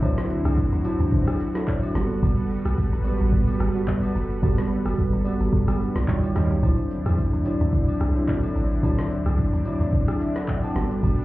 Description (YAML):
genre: amapiano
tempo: 109 BPM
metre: 4/4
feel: swing 55% on 16ths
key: unclear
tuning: A4 = 440 Hz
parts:
  - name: mellow tine electric piano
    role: accompaniment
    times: 0.0-11.2 s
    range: F#3 to A5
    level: -25 LUFS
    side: right 1 dB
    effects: phaser
  - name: lush unison pad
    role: sustained chords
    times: 0.0-11.2 s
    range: D3 to B4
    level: -32 LUFS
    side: left 2 dB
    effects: chorus
  - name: woody log drum bass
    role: bass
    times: 0.0-11.2 s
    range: F#1 to E2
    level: -24 LUFS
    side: equal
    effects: none
  - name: smooth R&B drum kit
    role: drums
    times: 0.0-11.2 s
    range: handclaps, kick drum, rim click, shaker, snare drum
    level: -26 LUFS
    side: equal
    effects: none
  - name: agogo bells and woodblock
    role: percussion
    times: 0.0-11.2 s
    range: none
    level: -41 LUFS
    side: left 2 dB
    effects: none
room: little or no reverb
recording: heard muffled through a wall, club reverb, EQ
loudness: -20 LUFS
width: side -17 dB against mid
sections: 0.0-11.2 A section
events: tine electric piano fill 5.8-6.6, 9.9-11.0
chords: 0.0 D9; 2.0 Gmaj9; 6.1 Eb9; 6.6 D9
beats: | 0.02 0.57 1.12 1.68 | 2.23 2.78 3.33 3.88 | 4.43 4.98 5.53 6.08 | 6.63 7.18 7.73 8.28 | 8.83 9.38 9.93 10.48 | 11.03